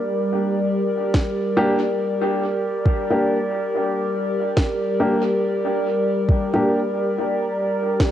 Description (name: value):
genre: ambient dub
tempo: 70 BPM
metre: 4/4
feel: swing 59% on 16ths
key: G minor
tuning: A4 = 440 Hz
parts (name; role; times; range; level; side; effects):
- warbly tape-like pad; sustained chords; 0.0-8.1 s; G3 to D5; -21 LUFS; equal; chorus, built-in reverb, phaser, cassette tape
- electronic kick drum; drums; 1.1-8.1 s; none; -18 LUFS; equal; overdrive
- electronic snare drum and congas; drums; 1.1-8.1 s; none; -28 LUFS; equal; overdrive, dub echo
- dark upright piano; stabs; 1.6-6.8 s; Bb3 to G4; -24 LUFS; equal; cassette tape, dub echo
- bubbling stepped-filter texture; texture; 7.2-8.1 s; Bb4; -29 LUFS; right 3 dB; chorus, built-in reverb, cassette tape
room: light reverb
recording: home recording on cassette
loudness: -19 LUFS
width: side -11 dB against mid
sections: 0.0-8.1 A section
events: none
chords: 0.0 Gm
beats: 0.29 1.14 2.00 | 2.86 3.71 4.57 5.43 | 6.29 7.14 8.00